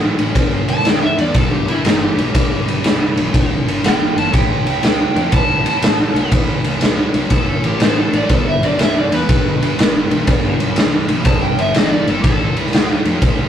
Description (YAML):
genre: blues rock power trio and southern rock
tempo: 121 BPM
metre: 4/4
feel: swing 67% on 8ths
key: unclear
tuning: A4 = 438 Hz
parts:
  - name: sludgy distorted guitar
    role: riff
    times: 0.0-13.5 s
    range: G2 to F#3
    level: -21 LUFS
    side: right 1 dB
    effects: overdrive
  - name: fuzz picked electric bass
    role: bass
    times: 0.0-13.5 s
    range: F1 to F2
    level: -24 LUFS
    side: equal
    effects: overdrive
  - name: raw garage drum kit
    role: drums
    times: 0.2-13.4 s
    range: kick drum, ride cymbal, snare drum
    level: -15 LUFS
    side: equal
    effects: none
  - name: overdriven slide guitar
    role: melody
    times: 0.7-12.6 s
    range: D#4 to A5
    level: -21 LUFS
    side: right 1 dB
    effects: none
room: light reverb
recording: rough rehearsal-room recording, tube saturation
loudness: -13 LUFS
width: side -9 dB against mid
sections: 0.0-13.5 A section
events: electric slide guitar solo 0.0-13.5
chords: 0.4 G; 4.3 Am; 8.3 G; 12.2 Am